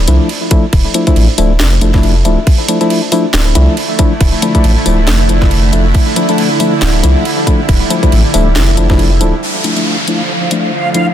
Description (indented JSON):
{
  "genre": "deep dubstep",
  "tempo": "138 BPM",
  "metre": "4/4",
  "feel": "swing 57% on 16ths, half-time",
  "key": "D minor",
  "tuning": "A4 = 440 Hz",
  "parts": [
    { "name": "soft dub sub bass", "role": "bass", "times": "0.0-9.3 s", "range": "D1 to C2", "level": "-11 LUFS", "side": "equal", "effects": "none" },
    { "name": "percussive organ stab", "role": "stabs", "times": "0.1-11.1 s", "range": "F3 to E4", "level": "-14 LUFS", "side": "left 2 dB", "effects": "chorus, dub echo" },
    { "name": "garage drum kit", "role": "drums", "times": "0.1-11.0 s", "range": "crash cymbal, hi-hat, snare drum", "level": "-18 LUFS", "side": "right 1 dB", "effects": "none" },
    { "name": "electronic kick drum", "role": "drums", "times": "0.5-9.0 s", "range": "none", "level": "-10 LUFS", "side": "equal", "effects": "none" },
    { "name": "bowed-like drone", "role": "sustained chords", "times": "3.5-11.1 s", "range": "D3 to F4", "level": "-18 LUFS", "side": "right 2 dB", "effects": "built-in reverb" },
    { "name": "downlifter", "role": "sound effects", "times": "9.4-11.1 s", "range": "none", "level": "-18 LUFS", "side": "equal", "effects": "none" },
    { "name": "backwards swelling texture", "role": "texture", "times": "9.9-11.1 s", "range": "F3 to F5", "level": "-18 LUFS", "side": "right 2 dB", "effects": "built-in reverb" }
  ],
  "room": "digital ambience",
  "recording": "dense, heavily limited modern master",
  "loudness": "-9 LUFS",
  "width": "side -10 dB against mid",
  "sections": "0.0-9.4 A section; 9.4-11.1 B section",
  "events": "drop 0.0-9.4; kick drops out 9.0-9.4",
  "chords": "0.0 Dmadd9",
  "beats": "0.29 | 0.73 1.17 1.60 2.03 | 2.47 2.90 3.34 3.77 | 4.21 4.64 5.08 5.51 | 5.95 6.38 6.82 7.25 | 7.69 8.12 8.56 8.99 | 9.43 9.86 10.29 10.73"
}